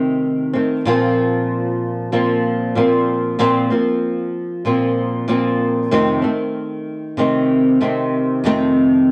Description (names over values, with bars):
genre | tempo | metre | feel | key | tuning
indie pop | 95 BPM | 4/4 | swing 55% on 16ths | unclear | A4 = 439 Hz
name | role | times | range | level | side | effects
flamenco guitar | solo | 0.0-9.1 s | F2 to C4 | -18 LUFS | equal | lush chorus, warbly pitch drift
room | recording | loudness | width
light reverb | dry, gritty hardware recording, cassette tape | -18 LUFS | mono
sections
0.9-9.1 A section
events
none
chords
0.0 F7 (rootless); 0.9 Bbsus2; 5.9 F7